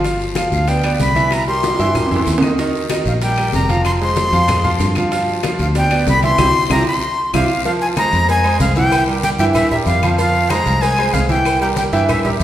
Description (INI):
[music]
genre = latin, salsa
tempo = 189 BPM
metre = 4/4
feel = straight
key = F harmonic minor from 7.7 s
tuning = A4 = 440 Hz
[part]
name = clear concert grand piano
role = accompaniment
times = 0.0-12.4 s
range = Eb3 to F5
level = -20 LUFS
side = right 2 dB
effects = none
[part]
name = fingered electric bass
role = bass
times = 0.0-12.4 s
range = F1 to G2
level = -19 LUFS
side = equal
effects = none
[part]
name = bongos and cowbell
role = percussion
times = 0.0-12.4 s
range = none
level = -28 LUFS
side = left 4 dB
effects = none
[part]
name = congas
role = percussion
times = 0.0-12.4 s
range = none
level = -26 LUFS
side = left 1 dB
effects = none
[part]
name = guiro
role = percussion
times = 0.0-12.4 s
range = none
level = -32 LUFS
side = left 5 dB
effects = none
[part]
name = maracas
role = percussion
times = 0.1-12.4 s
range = none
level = -33 LUFS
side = right 3 dB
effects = none
[part]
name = timbales and agogo bells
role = percussion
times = 0.1-12.4 s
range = none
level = -25 LUFS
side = right 2 dB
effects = none
[part]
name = claves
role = percussion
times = 0.4-12.2 s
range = none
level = -32 LUFS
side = left 5 dB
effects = none
[part]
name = breathy bright jazz flute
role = melody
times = 0.5-12.4 s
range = E5 to C6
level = -18 LUFS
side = equal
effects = none
[sound]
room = wet recital hall reverb, RT60 1.5 s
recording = recorded in a church or concert hall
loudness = -13 LUFS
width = side -12 dB against mid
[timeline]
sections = 0.0-7.7 A section; 7.7-12.4 B section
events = drum fill 1.6-2.6, 6.4-7.7; band accent 6.4-7.7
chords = 0.1 G7; 1.3 C7; 2.6 Eb; 3.9 Fm; 5.1 G7; 6.4 C; 7.7 Fm; 8.9 C7; 10.2 Fm; 11.5 C7